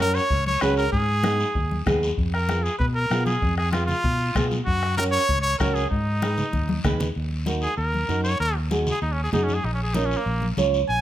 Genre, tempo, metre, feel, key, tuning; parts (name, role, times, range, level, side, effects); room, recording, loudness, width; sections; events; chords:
latin, cumbia; 193 BPM; 4/4; straight; Eb minor; A4 = 440 Hz
bright trumpet; melody; 0.0-11.0 s; Bb3 to Ab5; -25 LUFS; equal
flamenco guitar; accompaniment; 0.0-10.8 s; Cb4 to Db5; -27 LUFS; right 2 dB
fingered electric bass; bass; 0.0-11.0 s; Bb1 to Cb3; -26 LUFS; equal
guiro; percussion; 0.0-11.0 s; -37 LUFS; left 3 dB
bombo; percussion; 0.3-7.0 s; -28 LUFS; left 2 dB
congas; percussion; 0.3-10.7 s; -31 LUFS; left 1 dB
light reverb; -21 LUFS; side -12 dB against mid
0.0-7.2 A section; 7.2-11.0 B section
drum fill 6.5-7.2; trumpet solo 7.2-11.0
0.0 Gb; 0.9 Abm; 2.2 Fdim; 4.7 Gb; 5.9 Abm; 7.2 Ebm; 9.6 Bbm